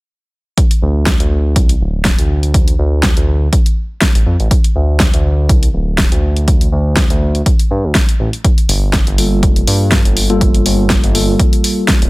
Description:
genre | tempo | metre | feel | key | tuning
deep house | 122 BPM | 4/4 | swing 54% on 16ths | unclear | A4 = 440 Hz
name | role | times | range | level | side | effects
deep house drum kit | drums | 0.6-12.1 s | hi-hat, snare drum | -17 LUFS | equal | none
electronic kick drum | drums | 0.6-12.0 s | none | -13 LUFS | equal | none
smooth synth bass | bass | 0.8-12.1 s | D1 to G2 | -14 LUFS | equal | sidechain pumping
mellow tine electric piano | stabs | 9.2-12.1 s | G3 to A4 | -16 LUFS | left 1 dB | medium stereo tremolo, sidechain pumping
room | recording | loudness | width
digital ambience | none | -10 LUFS | side -22 dB against mid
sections
0.6-12.1 A section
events
none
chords
0.6 N.C.; 8.4 Gm9

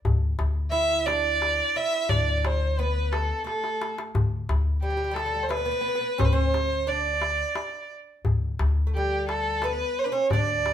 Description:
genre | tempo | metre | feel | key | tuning
Arabic maqam ensemble | 88 BPM | 3/4 | straight | D maqam rast | A4 = 440 Hz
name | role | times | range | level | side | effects
upright bass | bass | 0.0-10.7 s | D2 | -27 LUFS | left 1 dB | none
darbuka | percussion | 0.1-10.7 s | none | -28 LUFS | left 2 dB | none
clear violin | melody | 0.7-10.7 s | G4 to E5 | -25 LUFS | right 1 dB | none
oud | second line | 0.7-10.7 s | G3 to E4 | -33 LUFS | right 5 dB | none
room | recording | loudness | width
wet studio reverb, RT60 0.8 s | band playing live in one room | -23 LUFS | side -10 dB against mid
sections
0.0-10.7 A section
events
drum fill 3.5-4.1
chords
none

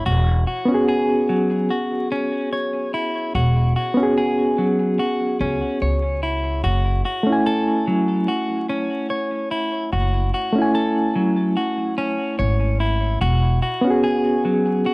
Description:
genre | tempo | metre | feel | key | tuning
trip hop | 73 BPM | 4/4 | straight | unclear | A4 = 440 Hz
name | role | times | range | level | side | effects
bright reed electric piano | accompaniment | 0.0-14.9 s | A3 to G#5 | -20 LUFS | equal | tremolo, low-pass filter, tape echo
clean electric guitar | arpeggios | 0.0-14.9 s | F#3 to C#5 | -23 LUFS | left 1 dB | tape echo
upright bass | bass | 0.0-13.6 s | E1 to C#2 | -19 LUFS | equal | tube saturation
room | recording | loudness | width
light reverb, small room ambience | worn, warbling old tape, cassette tape, vinyl crackle, warbly pitch drift | -18 LUFS | side -26 dB against mid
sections
0.0-14.9 A section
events
none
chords
0.1 E69; 6.6 F#m7; 13.2 E69

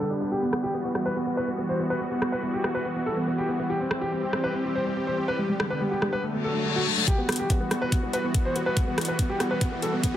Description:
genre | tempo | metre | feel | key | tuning
heavy wobble dubstep | 142 BPM | 4/4 | half-time | E minor | A4 = 441 Hz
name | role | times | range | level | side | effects
warm grand piano | melody | 0.0-10.2 s | G3 to C5 | -27 LUFS | equal | dub echo
supersaw pad | sustained chords | 0.0-10.2 s | D3 to G4 | -29 LUFS | equal | sidechain pumping
big-room dance drum kit | drums | 0.5-10.1 s | hi-hat, rim click | -30 LUFS | equal | studio reverb
reverse cymbal and riser | sound effects | 6.4-10.2 s | none | -30 LUFS | left 6 dB | none
electronic kick drum | drums | 7.1-10.1 s | none | -25 LUFS | equal | studio reverb
room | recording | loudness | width
light reverb, digital ambience | low-pass filter | -24 LUFS | side -11 dB against mid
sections
0.0-7.1 A section; 7.1-10.2 B section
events
filter sweep 0.0-7.1; reverse cymbal 6.4-7.1; build-up 7.1-10.2; riser 7.1-10.2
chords
0.3 Emadd9; 3.7 C; 5.4 G; 6.2 D; 7.1 Emadd9

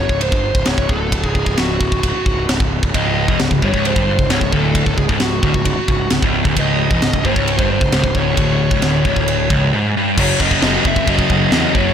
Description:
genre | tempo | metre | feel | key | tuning
heavy metal | 133 BPM | 4/4 | straight | unclear | A4 = 440 Hz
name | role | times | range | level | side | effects
bluesy overdriven lead guitar | melody | 0.0-11.9 s | F#4 to E5 | -22 LUFS | equal | distortion, tape echo
fuzz picked electric bass | bass | 0.0-11.9 s | C#1 to E2 | -21 LUFS | equal | overdrive
tight metal drum kit | drums | 0.1-11.9 s | crash cymbal, kick drum, ride cymbal, snare drum | -18 LUFS | equal | none
sludgy distorted guitar | riff | 2.9-11.9 s | C#2 to F#3 | -17 LUFS | equal | overdrive
room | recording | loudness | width
small room ambience | blown-out, overdriven recording, overdrive | -13 LUFS | side -8 dB against mid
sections
0.0-10.2 A section; 10.2-11.9 B section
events
none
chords
0.0 N.C.; 10.2 F#5

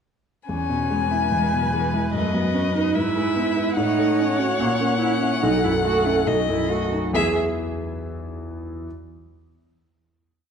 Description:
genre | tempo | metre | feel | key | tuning
quick classical-period movement for piano quartet | 144 BPM | 4/4 | rubato | E major | A4 = 440 Hz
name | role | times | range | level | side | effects
rich violin | melody | 0.5-7.4 s | D#5 to G#5 | -26 LUFS | left 7 dB | none
warm cello | second line | 0.5-7.4 s | E3 to G#4 | -24 LUFS | right 5 dB | none
rich viola | accompaniment | 0.5-7.4 s | G#4 to C#5 | -28 LUFS | right 3 dB | none
warm concert grand piano | accompaniment | 0.5-8.9 s | B1 to E5 | -24 LUFS | left 2 dB | none
room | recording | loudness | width
wet recital hall reverb, RT60 1.7 s | dark, warm production | -19 LUFS | side -7 dB against mid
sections
0.5-7.1 theme; 7.1-8.8 final chord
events
none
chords
0.5 E; 2.1 B/F#; 3.0 E/G#; 3.8 F#m/A; 4.6 F#7/A#; 5.4 B7sus4; 6.3 B7; 7.1 E

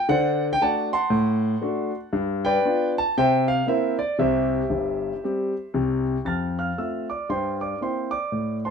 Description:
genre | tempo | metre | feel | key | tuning
jazz, stride piano | 117 BPM | 4/4 | swing 61% on 8ths | unclear | A4 = 440 Hz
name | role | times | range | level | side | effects
warm concert grand piano | solo | 0.0-8.7 s | G1 to A6 | -21 LUFS | equal | none
room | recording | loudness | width
moderate studio reverb, RT60 0.6 s | minimal, uncompressed stereo recording | -21 LUFS | side -6 dB against mid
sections
0.0-6.3 A section; 6.3-8.7 B section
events
none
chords
0.1 D7; 2.1 G7; 3.2 C7; 4.2 C; 6.3 F; 7.3 C7/G

